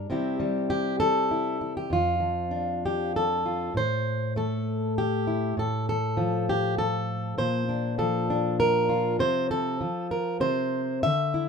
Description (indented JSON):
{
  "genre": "folk, solo fingerstyle acoustic guitar",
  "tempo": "99 BPM",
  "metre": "3/4",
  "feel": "straight",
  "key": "F major",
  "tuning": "A4 = 441 Hz",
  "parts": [
    { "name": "fingerpicked plugged-in steel-string acoustic guitar", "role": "solo", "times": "0.0-11.5 s", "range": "F2 to E5", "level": "-24 LUFS", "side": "equal", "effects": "none" }
  ],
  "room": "moderate studio ambience, RT60 0.5 s",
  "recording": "minimal, uncompressed stereo recording",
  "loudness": "-24 LUFS",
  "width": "side -5 dB against mid",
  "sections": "0.0-3.8 A section; 3.8-11.5 B section",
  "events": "none",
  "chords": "0.1 C; 1.9 F6; 3.8 Am7; 5.6 F/A; 7.4 Bbadd9; 9.2 F/C; 10.4 N.C.",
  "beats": "| 0.09 0.70 1.30 | 1.91 2.52 3.13 | 3.75 4.36 4.97 | 5.57 6.17 6.78 | 7.38 7.98 8.59 | 9.20 9.81 10.43 | 11.05"
}